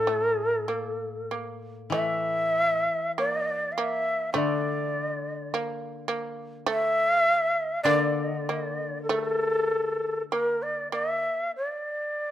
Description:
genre	japanese traditional, Japanese chamber music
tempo	47-53 BPM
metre	2/4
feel	rubato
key	unclear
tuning	A4 = 441 Hz
part	breathy shakuhachi	melody	0.0-12.3 s	A4 to F5	-25 LUFS	equal	none
part	koto	accompaniment	0.0-11.2 s	A2 to E3	-33 LUFS	left 6 dB	none
part	shamisen	second line	0.1-11.6 s	A3 to Bb3	-32 LUFS	right 4 dB	none
room	moderate spring reverb, RT60 1.3 s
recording	none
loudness	-24 LUFS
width	side -12 dB against mid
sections	0.0-1.9 A section; 1.9-11.6 B section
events	none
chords	none

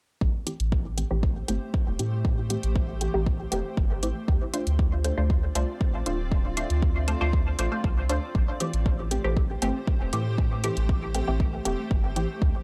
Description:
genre	dub techno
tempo	118 BPM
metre	4/4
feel	straight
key	A minor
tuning	A4 = 440 Hz
part	granular cloud pad	sustained chords	1.2-12.6 s	A3 to D5	-41 LUFS	equal	built-in reverb, sidechain pumping
part	soft dub sub bass	bass	0.2-12.5 s	D1 to A2	-30 LUFS	equal	sidechain pumping
part	electronic kick drum	drums	0.2-12.5 s	none	-28 LUFS	equal	overdrive
part	filtered dub chord stab	stabs	0.5-12.3 s	E3 to C5	-33 LUFS	equal	phaser, sidechain pumping, dub echo
part	electronic hi-hat	drums	0.5-12.3 s	none	-36 LUFS	equal	overdrive
room	little or no reverb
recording	dry, gritty hardware recording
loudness	-26 LUFS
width	mono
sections	0.2-12.6 A section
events	none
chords	0.2 Am7; 4.3 Dm7; 8.3 Am7

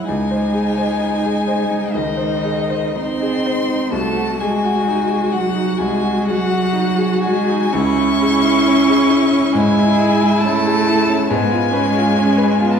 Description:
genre	classical, slow romantic movement for piano quartet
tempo	56-70 BPM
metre	4/4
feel	rubato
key	C# minor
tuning	A4 = 439 Hz
part	clear violin	melody	0.0-12.8 s	D#5 to C#6	-21 LUFS	left 5 dB	none
part	rich cello	second line	0.0-12.8 s	D#3 to C#4	-18 LUFS	right 2 dB	none
part	clear concert grand piano	accompaniment	0.0-12.8 s	B#1 to C#5	-21 LUFS	left 1 dB	none
part	rich viola	accompaniment	0.0-12.8 s	B3 to F#4	-22 LUFS	right 1 dB	none
room	wet recital hall reverb, RT60 1.8 s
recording	heard from further back in the room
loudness	-14 LUFS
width	side -7 dB against mid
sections	0.0-12.8 A section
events	none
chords	0.1 G#/C#; 3.9 G#7/B#; 7.7 C#m; 11.3 C#7/G#

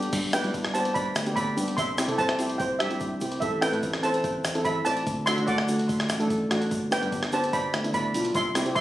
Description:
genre	calypso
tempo	146 BPM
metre	4/4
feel	straight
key	unclear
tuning	A4 = 437 Hz
part	steel pan	accompaniment	0.0-8.8 s	A3 to C5	-28 LUFS	equal	none
part	fingered electric bass	bass	0.0-8.8 s	G1 to G3	-33 LUFS	equal	none
part	jungle sampler-style drum kit	drums	0.0-8.8 s	crash cymbal, hi-hat, kick drum, rim click	-31 LUFS	equal	none
part	egg shaker	percussion	0.1-8.8 s	none	-41 LUFS	equal	none
part	steel pan	melody	0.3-8.8 s	G4 to C6	-28 LUFS	right 1 dB	analog delay
room	light reverb, small room ambience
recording	recorded on a phone in the room, studio reverb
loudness	-24 LUFS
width	side -14 dB against mid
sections	0.1-8.8 A section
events	none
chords	0.1 G; 1.8 C; 3.4 Am; 5.1 D; 6.7 G

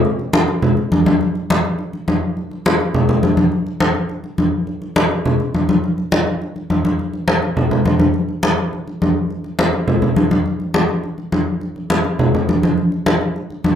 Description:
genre	latin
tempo	207 BPM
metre	4/4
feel	straight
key	none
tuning	none
part	congas	percussion	0.0-13.8 s	none	-15 LUFS	equal	none
room	wet studio reverb, RT60 0.5 s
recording	none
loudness	-15 LUFS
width	side -9 dB against mid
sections	0.0-9.3 A section; 9.3-13.8 B section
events	none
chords	none

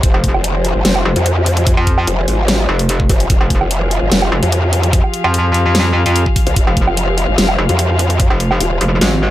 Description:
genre	heavy wobble dubstep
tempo	147 BPM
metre	4/4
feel	half-time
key	F minor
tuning	A4 = 440 Hz
part	warm chamber string section	sustained chords	0.0-9.3 s	F3 to F5	-21 LUFS	left 2 dB	sidechain pumping, low-pass filter
part	growl bass	bass	0.0-8.8 s	Eb1 to F2	-15 LUFS	equal	chorus, overdrive
part	dubstep drum kit	drums	0.0-9.1 s	hi-hat, snare drum, woodblock	-18 LUFS	right 1 dB	none
part	electronic kick drum	drums	0.0-8.3 s	none	-14 LUFS	equal	none
part	metallic wobble bass	bass	0.1-9.3 s	F1 to F2	-14 LUFS	equal	distortion, chorus, overdrive
room	little or no reverb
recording	none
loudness	-12 LUFS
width	side -14 dB against mid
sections	0.0-9.3 A section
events	none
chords	0.0 Fmadd9

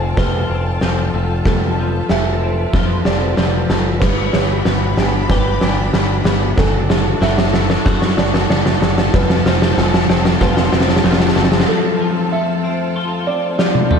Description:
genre	post-rock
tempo	94 BPM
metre	4/4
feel	straight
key	unclear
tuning	A4 = 440 Hz
part	rich studio string section	sustained chords	0.0-14.0 s	C4 to B5	-25 LUFS	left 1 dB	none
part	twelve-string electric guitar	arpeggios	0.0-14.0 s	D2 to G4	-22 LUFS	left 5 dB	ensemble chorus, tape echo
part	growling picked electric bass	bass	0.0-11.6 s	F1 to F#2	-19 LUFS	equal	overdrive
part	felt-muted upright piano	arpeggios	0.2-14.0 s	A4 to E5	-24 LUFS	right 5 dB	tape echo
part	oversized low-tuned drum kit	drums	0.2-14.0 s	crash cymbal, kick drum, snare drum, toms	-16 LUFS	equal	none
room	light reverb, small room ambience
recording	dark, warm production, lossy compression artefacts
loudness	-13 LUFS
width	side -6 dB against mid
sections	0.0-14.0 A section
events	build-up 0.0-14.0; drum fill 0.0-11.7, 13.6-14.0; break 11.7-14.0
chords	0.0 F; 4.0 G; 6.6 D/F#; 9.1 F

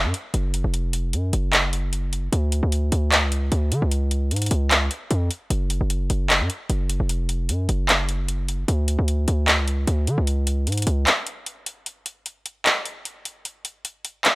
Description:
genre	hip hop, trap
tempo	151 BPM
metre	4/4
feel	half-time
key	unclear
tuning	A4 = 439 Hz
part	distorted 808-style bass	bass	0.0-11.1 s	E#1 to D3	-21 LUFS	equal	distortion
part	trap drum kit	drums	0.1-14.3 s	handclaps, hi-hat	-21 LUFS	equal	none
room	digital ambience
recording	dry, gritty hardware recording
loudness	-20 LUFS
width	side -23 dB against mid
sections	0.0-11.9 A section; 11.9-14.4 B section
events	kick muted 11.1-11.9; break 11.9-14.4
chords	none

